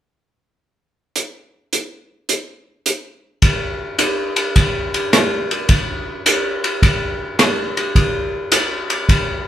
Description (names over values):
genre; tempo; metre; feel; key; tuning
jazz; 106 BPM; 4/4; swing 67% on 8ths; none; none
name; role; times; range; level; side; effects
open jazz drum kit; drums; 1.2-9.3 s; hi-hat, kick drum, ride cymbal, rim click; -15 LUFS; equal; none
room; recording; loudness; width
wet club reverb, RT60 0.9 s; heard from further back in the room; -16 LUFS; side -11 dB against mid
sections
1.1-3.4 A section; 3.4-9.5 B section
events
none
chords
none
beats
| 1.15 1.72 2.28 2.85 | 3.42 3.98 4.55 5.12 | 5.68 6.25 6.82 7.38 | 7.95 8.52 9.08